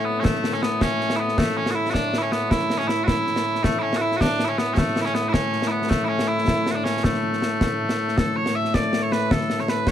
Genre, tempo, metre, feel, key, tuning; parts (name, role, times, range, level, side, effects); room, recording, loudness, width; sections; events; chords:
scottish traditional, Scottish pipe music; 106 BPM (dotted quarters); 6/8; straight; A major; A4 = 440 Hz
loud bright bagpipes; melody; 0.0-9.9 s; A2 to E5; -22 LUFS; equal
concert snare drum and concert bass drum; drums; 0.2-9.9 s; -24 LUFS; equal
light reverb; dark, warm production; -20 LUFS; side -10 dB against mid
0.0-8.2 A section; 8.2-9.9 A section